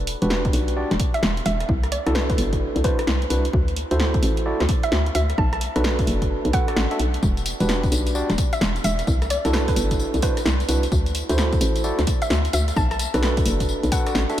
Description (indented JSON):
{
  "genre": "UK garage, two-step garage",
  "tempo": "130 BPM",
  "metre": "4/4",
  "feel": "swing 64% on 16ths",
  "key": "E minor",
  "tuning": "A4 = 439 Hz",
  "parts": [
    { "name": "hollow knocking FM bass", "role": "bass", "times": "0.0-14.3 s", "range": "E1 to D2", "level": "-22 LUFS", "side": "equal", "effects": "tube saturation" },
    { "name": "punchy analog drum machine", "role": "drums", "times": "0.1-14.4 s", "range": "hi-hat, rim click, snare drum, tambourine", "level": "-27 LUFS", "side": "equal", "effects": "none" },
    { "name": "overdriven tine electric piano", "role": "stabs", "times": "0.2-14.4 s", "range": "D4 to E5", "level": "-27 LUFS", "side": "right 1 dB", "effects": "vintage 12-bit sampler grit, diffuse ambient delay" },
    { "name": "electronic kick drum", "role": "drums", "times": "0.5-14.0 s", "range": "none", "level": "-22 LUFS", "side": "equal", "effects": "none" },
    { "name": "hollow square pluck", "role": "melody", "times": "1.1-14.4 s", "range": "B4 to A5", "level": "-29 LUFS", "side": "right 1 dB", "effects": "chorus, vintage 12-bit sampler grit, diffuse ambient delay" }
  ],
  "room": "light reverb",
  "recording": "none",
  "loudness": "-19 LUFS",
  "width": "side -12 dB against mid",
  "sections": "0.0-14.4 A section",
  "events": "none",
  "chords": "0.0 Em9; 1.7 Cmaj9#11; 3.5 D9; 5.4 Bm7; 7.2 Em9; 9.1 Cmaj9#11; 10.9 D9; 12.8 Bm7"
}